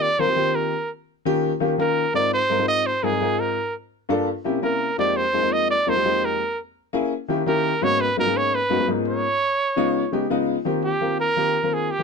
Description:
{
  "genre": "jazz",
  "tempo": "169 BPM",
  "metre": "4/4",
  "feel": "straight",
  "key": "Eb major",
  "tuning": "A4 = 440 Hz",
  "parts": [
    { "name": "breathy trumpet", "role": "melody", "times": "0.0-12.0 s", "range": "G4 to Eb5", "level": "-21 LUFS", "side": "right 2 dB", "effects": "none" },
    { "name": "warm upright piano", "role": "accompaniment", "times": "0.0-12.0 s", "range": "F2 to Bb4", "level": "-22 LUFS", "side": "left 3 dB", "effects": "none" }
  ],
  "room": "little or no reverb",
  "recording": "close, detailed microphones",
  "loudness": "-20 LUFS",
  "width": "side -5 dB against mid",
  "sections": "0.0-10.7 A section; 10.7-12.0 B section",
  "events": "trumpet solo 10.7-12.0",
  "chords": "0.0 Eb6; 0.7 Eb9; 2.1 Ab6; 3.6 Gm7; 4.3 C7b9; 5.0 Fm11; 6.4 Bbm7b5; 7.1 Eb7b9; 7.8 Abm11; 9.2 Db9; 10.7 Eb6",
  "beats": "0.01 0.37 | 0.72 1.08 1.43 1.79 | 2.14 2.50 2.85 3.21 | 3.56 3.92 4.27 4.63 | 4.98 5.34 5.69 6.05 | 6.40 6.75 7.11 7.46 | 7.82 8.17 8.53 8.88 | 9.24 9.59 9.95 10.30 | 10.66 11.01 11.37 11.72"
}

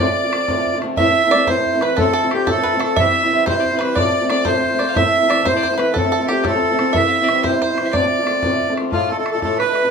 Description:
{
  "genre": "celtic folk, Celtic jig",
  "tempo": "121 BPM (dotted quarters)",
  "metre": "6/8",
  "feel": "straight",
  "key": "D dorian",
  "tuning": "A4 = 440 Hz",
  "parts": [
    { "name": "accordion", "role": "melody", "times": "0.0-9.9 s", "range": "F4 to E5", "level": "-18 LUFS", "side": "right 2 dB", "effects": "none" },
    { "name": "bluegrass banjo", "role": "second line", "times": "0.0-8.7 s", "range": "G4 to E5", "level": "-24 LUFS", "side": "right 3 dB", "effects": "none" },
    { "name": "rich fiddle", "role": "second line", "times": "0.0-9.9 s", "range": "F4 to F5", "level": "-26 LUFS", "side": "left 6 dB", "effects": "none" },
    { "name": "fingerpicked swing-style acoustic guitar", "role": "accompaniment", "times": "0.0-9.9 s", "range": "D2 to F4", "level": "-20 LUFS", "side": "equal", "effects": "none" },
    { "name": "bodhran", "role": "percussion", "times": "0.1-9.8 s", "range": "none", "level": "-26 LUFS", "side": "left 1 dB", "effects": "none" }
  ],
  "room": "wet studio reverb, RT60 0.6 s",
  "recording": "minimal, uncompressed stereo recording",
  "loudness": "-15 LUFS",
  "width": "side -6 dB against mid",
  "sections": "1.0-8.9 A section",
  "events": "none",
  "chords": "0.0 Dm7; 1.0 Am; 2.0 Dm7; 3.0 C; 4.0 Dm7; 5.0 Am; 5.9 Dm7; 6.9 C; 7.9 Dm7; 8.9 Dm",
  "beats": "0.48 | 0.98 1.48 | 1.98 2.47 | 2.97 3.47 | 3.96 4.46 | 4.96 5.45 | 5.95 6.44 | 6.94 7.43 | 7.93 8.42 | 8.92 9.41"
}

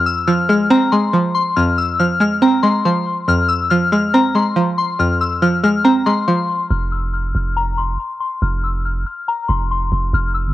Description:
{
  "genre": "hip hop, trap",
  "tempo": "140 BPM",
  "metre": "4/4",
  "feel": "half-time",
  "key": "F harmonic minor",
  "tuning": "A4 = 440 Hz",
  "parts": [
    { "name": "string-like resonator pluck", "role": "accompaniment", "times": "0.0-6.7 s", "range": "F2 to C4", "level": "-15 LUFS", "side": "right 1 dB", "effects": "chorus" },
    { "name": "soft synth bell", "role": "melody", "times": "0.1-10.5 s", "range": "Bb5 to F6", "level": "-18 LUFS", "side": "left 4 dB", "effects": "chorus, low-pass filter, cassette tape, analog delay" },
    { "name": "long sustained 808-style bass", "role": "bass", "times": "6.7-10.5 s", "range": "F1 to Ab1", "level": "-19 LUFS", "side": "right 1 dB", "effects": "none" }
  ],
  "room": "light reverb",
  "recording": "home recording on cassette",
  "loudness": "-14 LUFS",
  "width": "side -14 dB against mid",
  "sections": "0.0-6.7 A section; 6.7-10.5 B section",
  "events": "none",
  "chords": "0.0 Fm; 6.7 F5",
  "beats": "0.28 0.71 1.14 | 1.56 1.99 2.42 2.85 | 3.28 3.71 4.13 4.56 | 4.99 5.42 5.85 6.28 | 6.71 7.13 7.56 7.99 | 8.42 8.85 9.28 9.71 | 10.13"
}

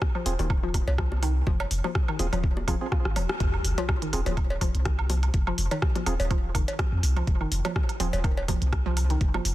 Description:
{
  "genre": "minimal techno",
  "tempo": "124 BPM",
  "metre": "4/4",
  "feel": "swing 55% on 16ths",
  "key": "F minor",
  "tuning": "A4 = 441 Hz",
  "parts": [
    { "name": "electronic kick drum", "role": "drums", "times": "0.0-9.3 s", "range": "none", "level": "-26 LUFS", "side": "equal", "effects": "none" },
    { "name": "minimal click drum kit", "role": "drums", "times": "0.0-9.5 s", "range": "hi-hat, rim click", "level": "-34 LUFS", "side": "equal", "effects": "soft clipping on snare" },
    { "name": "bongos, woodblock and cowbell", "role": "percussion", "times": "0.0-9.4 s", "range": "none", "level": "-35 LUFS", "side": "right 2 dB", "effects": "digital delay" },
    { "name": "hollow square pluck", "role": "riff", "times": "0.2-9.4 s", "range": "Eb3 to F4", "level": "-34 LUFS", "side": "left 1 dB", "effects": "chorus, phaser, sidechain pumping, digital delay" },
    { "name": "percussive organ stab", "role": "stabs", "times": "0.3-8.1 s", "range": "C4 to Ab4", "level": "-36 LUFS", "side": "right 3 dB", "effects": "chorus, digital delay" },
    { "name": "punchy sub bass", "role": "bass", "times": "0.3-9.5 s", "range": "Eb1 to F2", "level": "-27 LUFS", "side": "equal", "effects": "tube saturation, sidechain pumping" },
    { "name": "sub drop", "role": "sound effects", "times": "3.5-5.3 s", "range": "none", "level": "-35 LUFS", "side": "equal", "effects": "none" }
  ],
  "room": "little or no reverb",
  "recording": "dense, heavily limited modern master",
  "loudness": "-24 LUFS",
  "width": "side -15 dB against mid",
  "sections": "0.0-3.4 A section; 3.4-9.5 B section",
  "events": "drum fill 2.9-3.4; band accent 3.3; drop 3.4-9.5; impact 3.4-5.3",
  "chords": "0.0 Fm; 3.4 F5",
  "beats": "0.02 0.50 0.98 | 1.47 1.95 2.44 2.92 | 3.40 3.89 4.37 4.86 | 5.34 5.82 6.31 6.79 | 7.28 7.76 8.24 8.73 | 9.21"
}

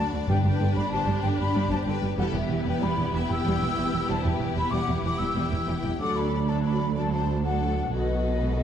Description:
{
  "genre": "cinematic, heroic adventure film score",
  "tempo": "126 BPM (dotted quarters)",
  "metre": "12/8",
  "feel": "straight",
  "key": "unclear",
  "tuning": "A4 = 440 Hz",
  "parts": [
    { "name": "warm symphonic violin section", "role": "melody", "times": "0.0-8.6 s", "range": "F#4 to G5", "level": "-37 LUFS", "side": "left 7 dB", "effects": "none" },
    { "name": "mellow flute section", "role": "second line", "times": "0.0-8.6 s", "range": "D#5 to E6", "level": "-31 LUFS", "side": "left 2 dB", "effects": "none" },
    { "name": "warm symphonic violin section", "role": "second line", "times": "0.0-8.6 s", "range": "D4 to B4", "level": "-34 LUFS", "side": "left 3 dB", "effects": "none" },
    { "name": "warm symphonic viola section", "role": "accompaniment", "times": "0.0-8.6 s", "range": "D3 to F#4", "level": "-31 LUFS", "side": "equal", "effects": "none" },
    { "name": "rich symphonic double bass section", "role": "bass", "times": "0.0-8.6 s", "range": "E1 to D2", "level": "-29 LUFS", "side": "right 3 dB", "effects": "none" },
    { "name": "warm symphonic cello section", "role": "bass", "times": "0.0-8.6 s", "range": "D2 to B2", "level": "-30 LUFS", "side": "right 2 dB", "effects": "none" },
    { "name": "timpani", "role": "percussion", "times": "0.3-0.7 s", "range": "G2", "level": "-30 LUFS", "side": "left 2 dB", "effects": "none" }
  ],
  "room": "moderate concert hall reverb, RT60 2.4 s",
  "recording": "dark, warm production",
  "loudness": "-23 LUFS",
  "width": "side -9 dB against mid",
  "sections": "0.0-8.6 A section",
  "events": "none",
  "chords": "0.3 G; 2.2 Em; 6.0 D; 7.9 B7",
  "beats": "| 0.28 0.76 1.23 1.71 | 2.18 2.66 3.14 3.62 | 4.09 4.57 5.04 5.52 | 6.00 6.48 6.95 7.44 | 7.92 8.41"
}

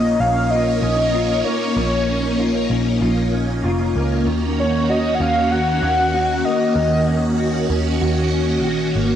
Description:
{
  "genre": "dream pop",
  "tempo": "96 BPM",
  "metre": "4/4",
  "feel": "straight",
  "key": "Eb minor",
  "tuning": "A4 = 442 Hz",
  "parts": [
    { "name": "warm velvety synth lead", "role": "melody", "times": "0.0-7.7 s", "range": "Db5 to Gb5", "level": "-21 LUFS", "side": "left 1 dB", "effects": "chorus, tape echo" },
    { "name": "phased string machine", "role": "sustained chords", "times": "0.0-9.2 s", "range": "Eb3 to Gb4", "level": "-23 LUFS", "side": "right 1 dB", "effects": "ensemble chorus, phaser" },
    { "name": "mellow electric guitar", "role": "arpeggios", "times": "0.0-9.2 s", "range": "Bb2 to Gb4", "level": "-21 LUFS", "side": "left 1 dB", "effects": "ensemble chorus, tape echo" },
    { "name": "vintage muted picked electric bass", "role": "bass", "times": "0.0-9.2 s", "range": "F1 to Eb2", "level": "-22 LUFS", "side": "right 1 dB", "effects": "none" }
  ],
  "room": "moderate concert hall reverb, RT60 2.2 s",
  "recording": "none",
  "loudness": "-16 LUFS",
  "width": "side -10 dB against mid",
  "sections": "0.0-9.2 A section",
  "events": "none",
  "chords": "0.0 Bbm; 4.3 Ebm7",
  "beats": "0.52 1.14 | 1.77 2.39 3.02 3.64 | 4.27 4.89 5.52 6.14 | 6.77 7.39 8.02 8.64"
}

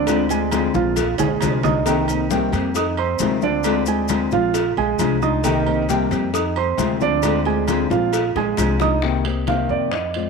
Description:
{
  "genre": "latin, Cuban son and guajira",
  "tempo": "134 BPM",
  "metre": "4/4",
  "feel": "straight",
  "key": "C minor",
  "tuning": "A4 = 440 Hz",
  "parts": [
    { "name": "nylon-string guitar", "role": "accompaniment", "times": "0.0-10.3 s", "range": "C3 to G4", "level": "-23 LUFS", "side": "left 13 dB", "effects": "none" },
    { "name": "dark concert grand piano", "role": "arpeggios", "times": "0.0-10.3 s", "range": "D3 to Eb6", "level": "-21 LUFS", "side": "right 9 dB", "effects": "none" },
    { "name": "upright bass", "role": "bass", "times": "0.0-10.3 s", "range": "Bb1 to F2", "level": "-26 LUFS", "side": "equal", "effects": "none" },
    { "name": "agogo bells and timbales", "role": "percussion", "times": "0.1-10.3 s", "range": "none", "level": "-30 LUFS", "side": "right 11 dB", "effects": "none" },
    { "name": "congas", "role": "percussion", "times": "0.1-10.3 s", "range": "none", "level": "-28 LUFS", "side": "left 10 dB", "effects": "none" },
    { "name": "cowbell and bongos", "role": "percussion", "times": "0.1-10.1 s", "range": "none", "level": "-29 LUFS", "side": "left 14 dB", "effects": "none" },
    { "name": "maracas", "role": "percussion", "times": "0.1-9.0 s", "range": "none", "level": "-33 LUFS", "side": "left 13 dB", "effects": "none" }
  ],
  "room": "moderate plate reverb, RT60 2.5 s",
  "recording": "1960s-style stereo with parts hard left and right",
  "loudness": "-17 LUFS",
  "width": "side -4 dB against mid",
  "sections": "0.0-9.0 A section; 9.0-10.3 B section",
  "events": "drum fill 1.0-1.9, 8.4-9.0; grand piano solo 9.0-10.3",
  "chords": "0.1 Dm7b5; 1.0 Bb7; 1.9 Cm7; 2.8 Fm7; 3.7 Dm7b5; 4.5 Bb7; 5.4 Cm7; 6.3 Fm7; 7.2 Dm7b5; 8.1 Bb7; 9.0 Cm7",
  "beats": "| 0.07 0.52 0.97 1.42 | 1.86 2.31 2.76 3.21 | 3.65 4.10 4.55 5.00 | 5.44 5.89 6.34 6.79 | 7.24 7.68 8.13 8.58 | 9.03 9.48 9.93"
}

